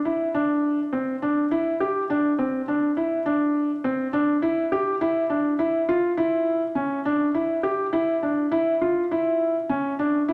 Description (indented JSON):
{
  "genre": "contemporary instrumental, contemporary",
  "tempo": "103 BPM",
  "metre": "5/4",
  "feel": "straight",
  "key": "unclear",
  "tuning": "A4 = 440 Hz",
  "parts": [
    { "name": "felt-muted upright piano", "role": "solo", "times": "0.1-10.3 s", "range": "C4 to G4", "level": "-24 LUFS", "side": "equal", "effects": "none" }
  ],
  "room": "moderate concert hall reverb, RT60 2.3 s",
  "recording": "none",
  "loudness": "-24 LUFS",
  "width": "mono",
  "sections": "0.0-10.3 A section",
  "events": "none",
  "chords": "none"
}